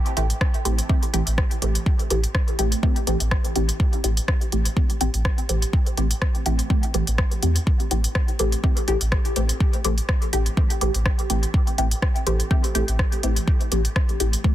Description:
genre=dub techno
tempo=124 BPM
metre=4/4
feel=swing 54% on 16ths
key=A minor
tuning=A4 = 440 Hz
part: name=deep house drum kit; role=drums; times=0.1-14.4 s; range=hi-hat, rim click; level=-29 LUFS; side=equal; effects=dub echo
part: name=filtered dub chord stab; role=stabs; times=0.2-14.5 s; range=E3 to G4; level=-27 LUFS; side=equal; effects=phaser, sidechain pumping, dub echo
part: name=soft dub sub bass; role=bass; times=0.2-14.4 s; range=A1 to E2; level=-22 LUFS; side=equal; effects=tube saturation, sidechain pumping
part: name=electronic kick drum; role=drums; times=0.4-14.5 s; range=none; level=-21 LUFS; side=equal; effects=none
room=little or no reverb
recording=dense, heavily limited modern master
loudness=-19 LUFS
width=side -13 dB against mid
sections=0.0-14.5 A section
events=none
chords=0.0 Am7

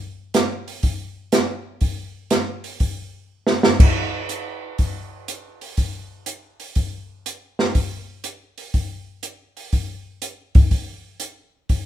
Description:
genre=jazz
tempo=122 BPM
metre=4/4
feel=swing 67% on 8ths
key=none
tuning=none
part: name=open jazz drum kit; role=drums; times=0.3-11.9 s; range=crash cymbal, hi-hat, kick drum, snare drum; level=-18 LUFS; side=equal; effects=none
room=light reverb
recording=band playing live in one room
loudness=-19 LUFS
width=side -12 dB against mid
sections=0.0-3.8 A section; 3.8-11.9 B section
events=drum fill 3.3-3.8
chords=none

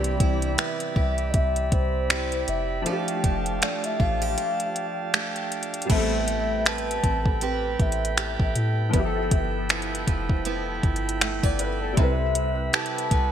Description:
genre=contemporary R&B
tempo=79 BPM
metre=4/4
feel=swing 58% on 16ths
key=C major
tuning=A4 = 435 Hz
part: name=soft octave-layered synth lead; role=melody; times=0.0-13.3 s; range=C5 to A5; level=-30 LUFS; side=left 3 dB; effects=chorus, phaser, ping-pong delay
part: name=warm grand piano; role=accompaniment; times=0.0-13.3 s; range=E3 to D5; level=-32 LUFS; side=left 3 dB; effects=ensemble chorus
part: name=chamber organ, flutes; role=sustained chords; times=0.0-13.3 s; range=G4 to B5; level=-33 LUFS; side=right 1 dB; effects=none
part: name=picked steel-string acoustic guitar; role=arpeggios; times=0.0-13.3 s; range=G2 to B4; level=-32 LUFS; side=right 8 dB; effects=none
part: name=soft 808-style bass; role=bass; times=0.0-13.3 s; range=F1 to A2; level=-28 LUFS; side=equal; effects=none
part: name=smooth R&B drum kit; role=drums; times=0.0-13.3 s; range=crash cymbal, finger snaps, hi-hat, kick drum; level=-24 LUFS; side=equal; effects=none
room=light reverb, small room ambience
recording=bright 1980s-style digital production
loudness=-22 LUFS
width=side -9 dB against mid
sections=0.0-5.9 A section; 5.9-13.3 B section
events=break 4.4-5.9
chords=0.0 Cmaj7; 2.9 F69; 5.9 Am9; 8.9 G13; 12.0 Cmaj7

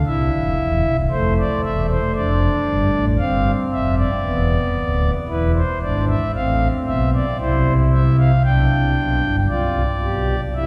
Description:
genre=classical, baroque-style 3-part fugue for pipe organ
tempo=57 BPM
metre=4/4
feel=straight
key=unclear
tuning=A4 = 438 Hz
part: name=pipe organ, principal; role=solo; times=0.0-10.7 s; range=C1 to G5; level=-19 LUFS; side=equal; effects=none
room=wet cathedral reverb, RT60 4.2 s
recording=heard from further back in the room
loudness=-19 LUFS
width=mono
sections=0.0-8.5 A section; 8.5-10.7 B section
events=none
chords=0.1 Am; 2.2 Dm/F; 4.2 E7; 6.3 Am; 8.5 G

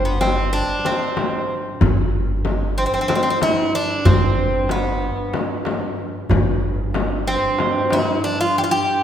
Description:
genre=Turkish makam ensemble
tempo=187 BPM (eighths)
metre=7/8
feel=straight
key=G makam hicaz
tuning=A4 = 440 Hz
part: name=Greek bouzouki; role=melody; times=0.0-9.0 s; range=B3 to G4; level=-20 LUFS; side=equal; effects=none
part: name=upright bass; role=bass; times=0.0-7.3 s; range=G1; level=-22 LUFS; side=equal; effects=none
part: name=rich double bass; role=drone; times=0.0-9.0 s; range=G2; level=-28 LUFS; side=right 2 dB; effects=none
part: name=darbuka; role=percussion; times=0.2-8.3 s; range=none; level=-24 LUFS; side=right 1 dB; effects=none
part: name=frame drum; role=percussion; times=0.2-8.1 s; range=none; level=-25 LUFS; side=left 4 dB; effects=none
room=wet scoring stage reverb, RT60 1.9 s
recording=heard from further back in the room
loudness=-17 LUFS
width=side -9 dB against mid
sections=0.0-9.0 A section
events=none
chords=none

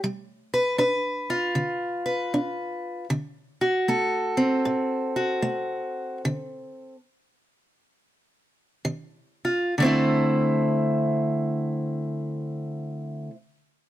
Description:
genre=blues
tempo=62-78 BPM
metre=4/4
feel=swing 64% on 8ths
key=D mixolydian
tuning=A4 = 443 Hz
part: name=fingerpicked steel-string acoustic guitar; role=solo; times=0.0-13.4 s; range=A2 to C5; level=-23 LUFS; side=equal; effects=none
room=little or no reverb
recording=close, detailed microphones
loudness=-23 LUFS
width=side -13 dB against mid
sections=0.0-9.8 A section; 9.8-13.7 B section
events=slowing down 3.1-9.8; stop 6.2-8.8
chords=0.0 G7; 3.1 D7; 6.2 D5; 8.8 Ebsus2; 9.8 Dsus2

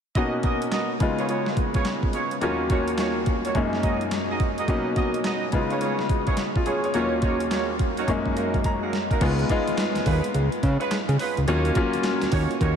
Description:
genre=R&B, new jack swing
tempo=106 BPM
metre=4/4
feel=swing 63% on 16ths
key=unclear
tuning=A4 = 440 Hz
part: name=dark horn section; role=stabs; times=0.1-12.8 s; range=Bb3 to D#5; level=-29 LUFS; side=right 4 dB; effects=ping-pong delay
part: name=bright concert grand piano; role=accompaniment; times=0.2-12.8 s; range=Eb2 to Bb5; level=-25 LUFS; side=left 2 dB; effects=none
part: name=crisp 8-bit digital drum machine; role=drums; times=0.2-12.8 s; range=crash cymbal, handclaps, hi-hat, kick drum, snare drum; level=-27 LUFS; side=equal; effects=overdrive
part: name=fat analog bass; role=bass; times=9.2-12.8 s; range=Db2 to Db3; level=-23 LUFS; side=equal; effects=none
room=wet huge ambient reverb, RT60 8.5 s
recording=dreamy mix soaked in reverb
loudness=-21 LUFS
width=side -7 dB against mid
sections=0.2-9.2 A section; 9.2-12.8 B section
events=drum fill 8.1-9.2; grand piano fill 8.4-9.2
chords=0.2 Bmaj7; 1.0 Db7; 2.4 Ebm7; 3.6 Gb69; 4.7 Bmaj7; 5.5 Db7; 6.9 Ebm7; 8.1 Gb69; 9.2 Db7; 11.5 Ebm7

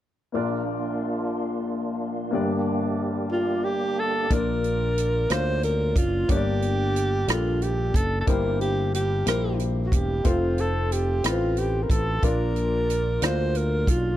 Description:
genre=slow gospel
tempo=61 BPM (dotted quarters)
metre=6/8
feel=straight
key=Bb major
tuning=A4 = 440 Hz
part: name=warm upright piano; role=accompaniment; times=0.3-14.2 s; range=G1 to F5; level=-29 LUFS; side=left 4 dB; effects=none
part: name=percussive tonewheel organ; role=sustained chords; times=0.4-4.3 s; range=Bb3 to G4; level=-29 LUFS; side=right 3 dB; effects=slow rotary speaker, overdrive, chorus vibrato
part: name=warm alto saxophone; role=melody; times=3.3-14.2 s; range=F4 to C5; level=-26 LUFS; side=right 1 dB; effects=none
part: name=fingered electric bass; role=bass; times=4.3-14.2 s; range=E1 to D2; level=-26 LUFS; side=equal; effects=none
part: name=natural country drum kit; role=drums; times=4.3-14.0 s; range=hi-hat, kick drum, rim click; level=-25 LUFS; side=right 1 dB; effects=none
room=little or no reverb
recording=dry, close 1970s-style studio recording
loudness=-22 LUFS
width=side -13 dB against mid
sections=0.3-4.3 A section; 4.3-14.2 B section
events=none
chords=0.3 Bb; 2.3 Gm; 4.3 Bb; 6.3 Gm; 8.3 C7/G; 10.3 F; 12.2 Bb

